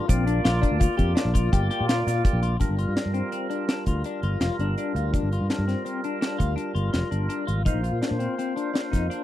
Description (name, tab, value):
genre	progressive instrumental, band music in an uneven meter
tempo	166 BPM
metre	7/4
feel	straight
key	G minor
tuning	A4 = 440 Hz
part	percussive tonewheel organ	accompaniment	0.0-9.2 s	G3 to D5	-30 LUFS	right 4 dB	slow rotary speaker
part	clean electric guitar	arpeggios	0.0-9.2 s	C4 to G4	-30 LUFS	left 10 dB	phaser
part	sustaining fretless electric bass	bass	0.1-9.1 s	F1 to Bb2	-25 LUFS	equal	none
part	deep reggae drum kit	drums	0.1-9.2 s	hi-hat, kick drum, snare drum	-24 LUFS	equal	none
part	egg shaker	percussion	0.1-9.1 s	none	-43 LUFS	right 22 dB	none
room	little or no reverb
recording	dry, close 1970s-style studio recording, lossy compression artefacts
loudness	-22 LUFS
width	side -13 dB against mid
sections	0.0-2.6 A section; 2.6-9.2 B section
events	none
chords	0.1 Bb; 2.6 Gm7; 7.7 Bbsus2